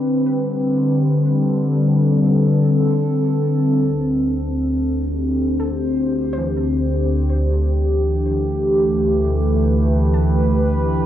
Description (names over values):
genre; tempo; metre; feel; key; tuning
ambient; free time; none; none; unclear; A4 = 440 Hz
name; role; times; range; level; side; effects
warbly tape-like pad; sustained chords; 0.0-11.1 s; D2 to C5; -16 LUFS; equal; chorus, built-in reverb, phaser
soft round pluck; arpeggios; 0.0-11.1 s; B2 to A5; -35 LUFS; left 1 dB; chorus, tape echo
room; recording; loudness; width
wet studio reverb, RT60 0.6 s; home recording on cassette, nothing above 10.4 kHz; -16 LUFS; side -11 dB against mid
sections
0.0-11.1 A section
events
fade-out on synth pluck 0.0-11.1; filter sweep on ambient pad 0.0-11.1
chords
0.0 Am11; 3.4 Gsus4/D